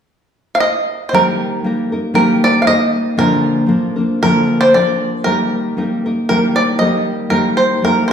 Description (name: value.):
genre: mexican folk, mariachi.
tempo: 117 BPM.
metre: 2/4.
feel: swing 54% on 8ths.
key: Eb major.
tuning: A4 = 439 Hz.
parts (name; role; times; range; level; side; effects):
bluegrass banjo; melody; 0.5-8.1 s; Bb4 to F5; -15 LUFS; right 1 dB; none.
nylon-string guitar; accompaniment; 1.1-8.1 s; Bb2 to Bb4; -15 LUFS; left 1 dB; none.
room: wet recital hall reverb, RT60 1.5 s.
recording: recorded in a church or concert hall.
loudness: -13 LUFS.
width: side -8 dB against mid.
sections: 0.1-1.1 A section; 1.1-8.1 B section.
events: none.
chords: 0.1 N.C.; 1.1 Eb; 3.2 Bb; 5.3 Eb.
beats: | 0.10 0.62 | 1.13 1.65 | 2.17 2.68 | 3.19 3.71 | 4.22 4.74 | 5.26 5.78 | 6.29 6.80 | 7.32 7.83.